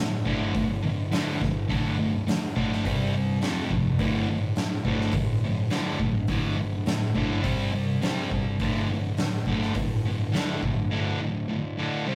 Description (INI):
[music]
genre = garage rock duo or trio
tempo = 104 BPM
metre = 4/4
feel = straight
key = D minor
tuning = A4 = 440 Hz
[part]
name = thick fuzz guitar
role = riff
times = 0.0-12.2 s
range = D2 to C4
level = -28 LUFS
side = equal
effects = distortion
[part]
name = oversized low-tuned drum kit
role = drums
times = 0.3-10.8 s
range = hi-hat, kick drum, snare drum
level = -30 LUFS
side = equal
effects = none
[sound]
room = wet booth ambience, RT60 0.2 s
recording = rough rehearsal-room recording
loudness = -26 LUFS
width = mono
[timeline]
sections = 0.0-12.2 A section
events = none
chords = 0.0 D5; 2.9 C5; 3.4 F5; 4.0 D5; 7.4 C5; 8.6 D5